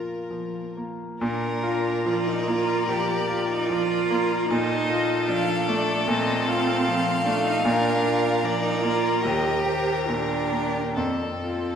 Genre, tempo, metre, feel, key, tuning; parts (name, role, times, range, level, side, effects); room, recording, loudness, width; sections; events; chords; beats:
classical, slow romantic movement for piano quartet; 74 BPM; 4/4; uneven beats, rubato; Bb major; A4 = 440 Hz
rich violin; melody; 0.0-11.8 s; A4 to Bb4; -29 LUFS; left 3 dB
bright violin; second line; 0.0-11.8 s; F4 to F5; -30 LUFS; equal
bright grand piano; accompaniment; 0.0-11.8 s; Eb2 to G4; -26 LUFS; left 1 dB
clear cello; second line; 0.3-11.8 s; Bb3 to G4; -26 LUFS; right 5 dB
wet scoring stage reverb, RT60 1.9 s; heard from further back in the room; -21 LUFS; side -7 dB against mid
0.0-1.2 A section; 1.2-11.8 A section
0.0 Bb5; 4.5 F7/Bb; 7.6 Bb; 9.2 Eb; 11.0 F
0.29 | 1.20 2.05 2.89 3.70 | 4.50 5.28 6.08 6.86 | 7.64 8.43 9.23 10.08 | 10.96